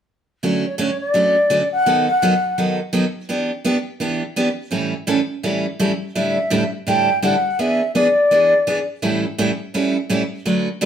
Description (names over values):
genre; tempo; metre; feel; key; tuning
country; 167 BPM; 4/4; swing 63% on 8ths; unclear; A4 = 440 Hz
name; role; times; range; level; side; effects
picked steel-string acoustic guitar; accompaniment; 0.4-10.9 s; A2 to B4; -19 LUFS; right 1 dB; none
mellow baroque flute; melody; 0.7-2.8, 6.2-8.9 s; C#5 to G5; -16 LUFS; left 1 dB; none
room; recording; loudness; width
wet studio reverb, RT60 0.7 s; band playing live in one room; -16 LUFS; side -8 dB against mid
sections
0.4-10.9 A section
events
none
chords
0.4 Dmaj7; 1.9 B7/D#; 3.3 Em7; 4.7 A7; 6.2 A7sus4; 7.6 E7; 9.0 A7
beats
| 0.42 0.78 1.14 1.50 | 1.85 2.21 2.57 2.93 | 3.29 3.64 4.00 4.36 | 4.72 5.08 5.44 5.80 | 6.16 6.51 6.87 7.23 | 7.59 7.95 8.31 8.67 | 9.03 9.39 9.75 10.11 | 10.46 10.82